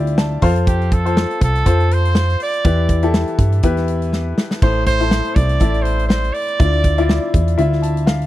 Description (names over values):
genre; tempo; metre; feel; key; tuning
piano-driven pop; 122 BPM; 4/4; swing 56% on 16ths; A minor; A4 = 440 Hz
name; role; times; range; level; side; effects
clear upright piano; accompaniment; 0.0-8.3 s; A2 to A5; -21 LUFS; left 4 dB; none
plucky analog bass; bass; 0.0-8.3 s; A1 to G2; -17 LUFS; equal; none
modern studio drum kit; drums; 0.1-8.3 s; crash cymbal, hi-hat, kick drum, snare drum; -17 LUFS; equal; none
clear trumpet; melody; 0.7-7.3 s; G4 to D5; -21 LUFS; right 2 dB; none
room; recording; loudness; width
little or no reverb; dry, close 1970s-style studio recording; -14 LUFS; side -14 dB against mid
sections
0.0-8.3 A section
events
upright piano fill 0.0-0.7, 7.6-8.3; drum fill 4.1-4.6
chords
0.4 F; 2.6 Em; 4.6 Am; 6.6 Dmadd9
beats
0.18 | 0.67 1.17 1.66 2.15 | 2.65 3.14 3.63 4.13 | 4.62 5.12 5.61 6.10 | 6.60 7.09 7.58 8.08